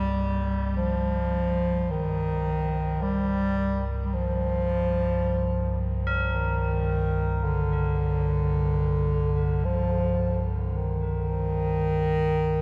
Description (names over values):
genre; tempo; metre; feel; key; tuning
dark ambient drone; 54 BPM; 4/4; straight; C minor; A4 = 440 Hz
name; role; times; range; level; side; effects
warm bass clarinet; melody; 0.0-12.6 s; D3 to G3; -29 LUFS; equal; delay
deep dark ambient pad; sustained chords; 0.0-1.9 s; C3 to Eb5; -53 LUFS; equal; none
deep rumbling drone; drone; 0.0-12.6 s; C2 to G2; -30 LUFS; equal; built-in reverb, analog chorus
tubular bells; arpeggios; 6.1-12.6 s; Bb4; -37 LUFS; equal; delay
room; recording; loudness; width
moderate lush hall reverb, RT60 3.0 s; dreamy mix soaked in reverb; -26 LUFS; mono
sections
0.0-1.9 A section; 1.9-12.6 B section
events
none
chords
0.0 Eb/C; 1.9 Cmadd9